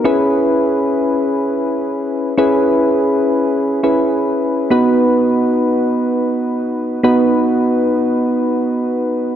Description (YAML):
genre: pop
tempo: free time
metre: none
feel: none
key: B major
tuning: A4 = 439 Hz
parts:
  - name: soft electric-piano-like synth keys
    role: solo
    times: 0.0-9.3 s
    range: B3 to B4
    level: -13 LUFS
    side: equal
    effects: chorus
room: moderate lush hall reverb, RT60 2.4 s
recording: dark, warm production, nothing above 10.8 kHz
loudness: -13 LUFS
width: side -10 dB against mid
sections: 0.0-9.4 A section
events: none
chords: 0.1 E6; 4.7 B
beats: free time